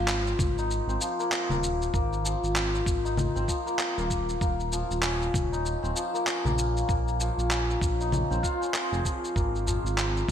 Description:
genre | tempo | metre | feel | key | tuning
organic downtempo | 97 BPM | 4/4 | swing 60% on 16ths | unclear | A4 = 440 Hz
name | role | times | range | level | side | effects
santur | arpeggios | 0.0-10.3 s | F3 to Ab4 | -29 LUFS | left 2 dB | ping-pong delay
smooth synth bass | bass | 0.0-10.3 s | Eb1 to Bb1 | -30 LUFS | right 1 dB | none
electronic handclaps, shaker and congas | drums | 0.1-10.3 s | none | -31 LUFS | left 1 dB | gated reverb
electronic kick drum | drums | 0.4-10.3 s | none | -29 LUFS | right 1 dB | none
udu | percussion | 9.7-9.8 s | none | -34 LUFS | equal | none
room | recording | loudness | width
light reverb, digital ambience | bright 1980s-style digital production | -25 LUFS | side -9 dB against mid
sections
0.0-10.3 A section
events
none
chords
0.0 Ab; 4.4 Ebsus2; 6.9 Bbm7; 9.4 Ab

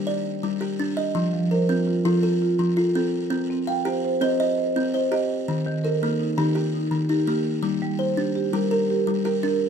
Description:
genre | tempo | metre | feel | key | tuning
southern african traditional, mbira-style interlocking cycle | 111 BPM (dotted quarters) | 12/8 | straight | F mixolydian | A4 = 440 Hz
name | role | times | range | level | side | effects
buzzing kalimba | arpeggios | 0.0-9.7 s | Eb3 to F5 | -22 LUFS | left 1 dB | none
marimba with soft mallets | arpeggios | 1.3-9.7 s | Eb3 to G5 | -26 LUFS | right 5 dB | none
room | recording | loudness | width
wet studio reverb, RT60 0.6 s | none | -21 LUFS | side -7 dB against mid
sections
0.0-1.2 A section; 1.2-9.7 A section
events
none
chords
0.0 G5; 1.2 F; 3.3 Cm; 5.5 Eb; 7.6 Gm

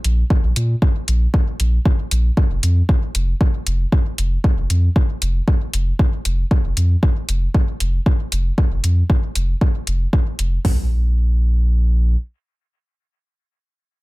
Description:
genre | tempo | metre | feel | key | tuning
dub techno | 116 BPM | 4/4 | straight | unclear | A4 = 440 Hz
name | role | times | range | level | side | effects
soft dub sub bass | bass | 0.0-12.2 s | F1 to Bb2 | -16 LUFS | equal | sidechain pumping
electronic hi-hat | drums | 0.0-10.5 s | none | -25 LUFS | left 1 dB | overdrive
deep house drum kit | drums | 0.3-10.8 s | hi-hat, kick drum, toms | -16 LUFS | equal | overdrive
room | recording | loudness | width
little or no reverb | none | -16 LUFS | side -21 dB against mid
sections
0.0-10.6 A section; 10.6-14.0 B section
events
filter sweep on sub bass 0.0-10.6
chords
none

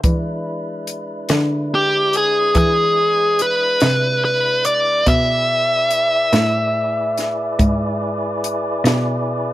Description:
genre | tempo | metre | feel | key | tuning
slow blues | 48 BPM (dotted quarters) | 12/8 | straight | unclear | A4 = 440 Hz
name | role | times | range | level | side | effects
tonewheel organ | sustained chords | 0.0-9.5 s | G#3 to D5 | -26 LUFS | equal | slow rotary speaker, overdrive, plate reverb
dark cello | bass | 0.0-9.5 s | G#2 to E3 | -22 LUFS | equal | none
compact cocktail drum kit | drums | 0.0-9.1 s | hi-hat, kick drum, snare drum | -20 LUFS | equal | none
dark smooth lead guitar | melody | 1.7-9.5 s | G4 to E5 | -16 LUFS | equal | overdrive, plate reverb
room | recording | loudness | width
light reverb | none | -15 LUFS | side -15 dB against mid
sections
0.0-9.5 A section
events
none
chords
0.0 E7

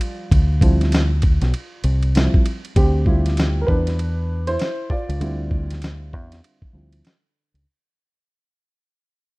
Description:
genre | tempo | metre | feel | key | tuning
hip hop, jazz-hop | 98 BPM | 4/4 | swing 62% on 16ths | D dorian | A4 = 442 Hz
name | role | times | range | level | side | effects
dark upright piano | accompaniment | 0.0-7.6 s | D3 to D5 | -25 LUFS | right 1 dB | none
lo-fi sampler-style drum kit | drums | 0.0-7.7 s | hi-hat, kick drum, ride cymbal, snare drum | -19 LUFS | equal | none
deep dub fingered electric bass | bass | 0.3-7.6 s | B1 to E2 | -19 LUFS | equal | none
room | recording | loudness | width
digital ambience | rough home demo mix, vinyl crackle | -17 LUFS | side -24 dB against mid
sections
0.0-2.8 A section; 2.8-7.7 B section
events
upright piano solo 0.0-2.8, 2.8-7.7; fade-out 2.8-7.7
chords
0.0 Dm11

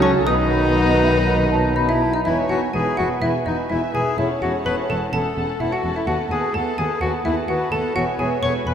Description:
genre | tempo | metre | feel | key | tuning
cinematic, playful, whimsical film cue | 126 BPM | 4/4 | straight | E major | A4 = 440 Hz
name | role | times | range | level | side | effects
muted studio violin section | melody | 0.0-8.7 s | A4 to E5 | -27 LUFS | left 1 dB | none
xylophone with rubber mallets | melody | 0.0-8.7 s | D#5 to D#6 | -26 LUFS | right 1 dB | none
bright oboe | second line | 0.0-2.0 s | C#4 to D#4 | -29 LUFS | left 3 dB | none
clear clarinet | second line | 0.0-8.7 s | C#4 to C#5 | -24 LUFS | left 3 dB | none
muted studio violin section | second line | 0.0-8.7 s | C#5 to A5 | -30 LUFS | left 1 dB | none
mellow bassoon | accompaniment | 0.0-2.0 s | C#4 to D#4 | -28 LUFS | right 2 dB | none
muted studio viola section | accompaniment | 0.0-8.7 s | F#3 to B4 | -26 LUFS | right 4 dB | none
mellow French horn section | sustained chords | 0.0-2.0 s | C#3 to D#3 | -29 LUFS | right 1 dB | none
muted studio cello section | bass | 0.0-8.7 s | D#2 to C#3 | -28 LUFS | equal | none
muted studio double bass section | bass | 0.0-8.7 s | E1 to D#2 | -27 LUFS | equal | none
mellow hollow small flute group | second line | 0.8-2.3 s | E5 to B5 | -29 LUFS | left 1 dB | none
room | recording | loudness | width
wet cathedral reverb, RT60 5.4 s | in a vast, echoing space | -18 LUFS | side -8 dB against mid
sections
0.0-2.3 A section; 2.3-8.7 B section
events
none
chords
0.3 B; 2.3 E; 4.2 F#m7/E; 6.1 B7/D#; 8.0 E

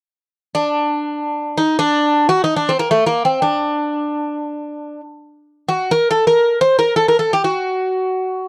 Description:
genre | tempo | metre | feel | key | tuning
greek folk | free time | none | none | D phrygian dominant | A4 = 445 Hz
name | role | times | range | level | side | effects
Greek bouzouki | melody | 0.5-8.5 s | A3 to C5 | -17 LUFS | equal | none
room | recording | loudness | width
light reverb | dry, close 1970s-style studio recording | -17 LUFS | mono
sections
0.1-8.5 A section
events
none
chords
none

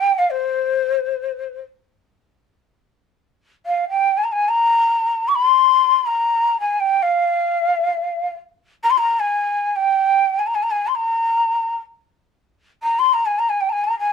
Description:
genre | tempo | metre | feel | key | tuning
Persian modal ensemble | free time | none | none | C dastgah shur | A4 = 439 Hz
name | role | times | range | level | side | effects
breathy ney | solo | 0.0-14.1 s | C5 to Db6+44c | -16 LUFS | left 1 dB | none
room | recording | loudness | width
light reverb | none | -16 LUFS | side -6 dB against mid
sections
0.0-3.2 A section; 3.2-14.1 A section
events
none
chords
none

